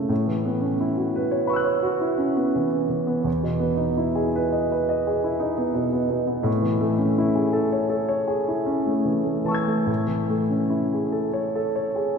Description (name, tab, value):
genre	classical, impressionist solo piano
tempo	47-58 BPM (dotted quarters)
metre	9/8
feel	rubato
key	unclear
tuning	A4 = 440 Hz
part	warm concert grand piano	solo	0.0-12.2 s	E2 to G#6	-21 LUFS	equal	none
room	wet church reverb, RT60 3.4 s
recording	none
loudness	-21 LUFS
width	side -6 dB against mid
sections	0.0-12.2 A section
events	none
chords	0.1 A69; 3.3 Emaj7; 6.5 Amaj7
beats	| 0.10 1.18 2.23 | 3.27 4.34 5.41 | 6.47 7.55 8.68 | 9.88 11.14